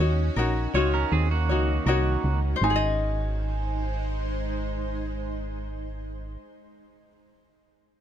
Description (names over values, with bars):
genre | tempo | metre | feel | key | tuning
acoustic pop | 80 BPM | 4/4 | straight | Ab mixolydian | A4 = 440 Hz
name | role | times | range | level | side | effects
dark upright piano | melody | 0.0-7.1 s | Gb5 to Ab5 | -33 LUFS | right 6 dB | none
tenor ukulele | accompaniment | 0.0-7.2 s | Eb4 to Eb5 | -28 LUFS | left 5 dB | none
shimmering ambient pad | sustained chords | 0.0-6.4 s | Eb3 to C5 | -34 LUFS | right 1 dB | chorus, built-in reverb
solid FM bass | bass | 0.0-6.4 s | Ab1 to Eb2 | -26 LUFS | right 1 dB | none
pedal steel guitar | second line | 0.8-2.4 s | Bb3 to Db5 | -30 LUFS | right 9 dB | none
room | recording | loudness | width
light reverb | close, detailed microphones | -24 LUFS | side -10 dB against mid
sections
0.0-2.6 A section; 2.6-5.6 B section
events
none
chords
0.0 Ebm7; 2.6 Ab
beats
0.37 1.12 1.87 | 2.62 3.37 4.12 4.87